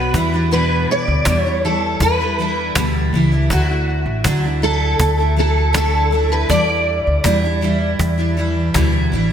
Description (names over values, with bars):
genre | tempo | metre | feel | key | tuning
acoustic pop | 80 BPM | 4/4 | straight | unclear | A4 = 440 Hz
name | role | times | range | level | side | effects
picked steel-string acoustic guitar | melody | 0.0-8.7 s | F#4 to D5 | -20 LUFS | equal | ensemble chorus, ping-pong delay
picked steel-string acoustic guitar | accompaniment | 0.0-9.3 s | E2 to F#4 | -20 LUFS | equal | double-tracked left and right
upright bass | bass | 0.0-9.3 s | A1 to E2 | -19 LUFS | equal | none
cajon | drums | 0.1-8.9 s | none | -21 LUFS | equal | none
room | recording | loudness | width
light reverb, studio reverb | bright 1980s-style digital production | -14 LUFS | side -9 dB against mid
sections
0.0-9.3 A section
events
none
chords
0.1 Em7; 3.5 Dadd9; 6.5 Em7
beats
| 0.52 1.26 2.01 2.76 | 3.51 4.25 5.00 5.75 | 6.50 7.25 7.99 8.74